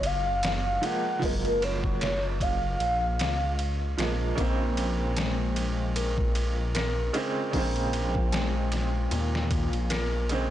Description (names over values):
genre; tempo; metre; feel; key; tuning
trip hop; 76 BPM; 4/4; swing 56% on 16ths; Bb minor; A4 = 444 Hz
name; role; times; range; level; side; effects
pure breathy sine lead; melody; 0.0-4.0 s; Bb4 to Gb5; -29 LUFS; equal; ensemble chorus, tape echo
clear upright piano; accompaniment; 0.0-10.5 s; Db3 to C4; -33 LUFS; right 3 dB; tremolo, tape echo
dark detuned saw bass; bass; 0.0-10.5 s; Gb1 to Eb2; -29 LUFS; equal; none
trip hop sampler-style drum kit; drums; 0.0-10.5 s; hi-hat, kick drum, ride cymbal, snare drum; -32 LUFS; equal; overdrive
felt-muted upright piano; arpeggios; 4.4-10.5 s; Bb2 to Bb4; -33 LUFS; left 3 dB; tape echo
bowed-like drone; texture; 5.9-10.5 s; F4; -43 LUFS; left 2 dB; none
room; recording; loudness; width
little or no reverb; blown-out, overdriven recording, overdrive, nothing above 10.9 kHz; -25 LUFS; side -12 dB against mid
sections
0.0-10.5 A section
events
none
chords
0.0 Gbmaj7; 4.4 Bbm7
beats
0.43 | 1.22 2.01 2.80 3.59 | 4.38 5.17 5.96 6.75 | 7.54 8.32 9.11 9.90